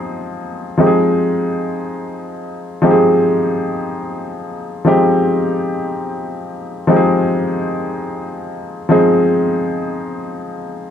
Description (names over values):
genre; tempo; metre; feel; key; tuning
disco; free time; none; none; F minor; A4 = 444 Hz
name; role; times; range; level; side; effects
warm baby grand piano; solo; 0.0-10.9 s; F3 to Ab4; -15 LUFS; left 1 dB; none
room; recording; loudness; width
small room ambience; dry, close 1970s-style studio recording; -14 LUFS; side -9 dB against mid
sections
0.8-10.9 A section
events
none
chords
0.0 Fm7